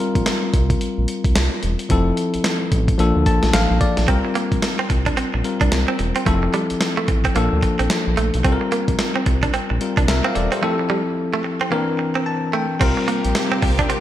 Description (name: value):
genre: R&B, new jack swing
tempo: 110 BPM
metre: 4/4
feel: swing 60% on 16ths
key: unclear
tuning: A4 = 440 Hz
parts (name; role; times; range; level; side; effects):
- bell-like tine electric piano; accompaniment; 0.0-14.0 s; E3 to A5; -21 LUFS; left 3 dB; none
- round analog bass; bass; 0.2-14.0 s; E1 to D2; -21 LUFS; equal; none
- dusty soul sampler-style drum kit; drums; 0.2-14.0 s; crash cymbal, handclaps, hi-hat, kick drum, snare drum; -21 LUFS; equal; gated reverb
- direct-recorded clean electric guitar; riff; 4.1-14.0 s; G3 to D4; -23 LUFS; right 5 dB; lush chorus
- warm studio string section; sustained chords; 12.8-14.0 s; C3 to G4; -26 LUFS; equal; none
room: moderate plate reverb, RT60 1.9 s, digital ambience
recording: bright 1980s-style digital production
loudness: -17 LUFS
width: side -12 dB against mid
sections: 0.0-12.8 A section; 12.8-14.0 B section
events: tine electric piano fill 3.0-4.1, 12.0-12.8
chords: 0.0 C7sus4; 1.9 Fmaj7; 3.0 Bbmaj7; 4.1 C7sus4; 6.3 Fmaj7; 7.4 Bbmaj7; 8.4 C7sus4; 10.6 Fmaj7; 11.7 C9; 12.8 C7sus4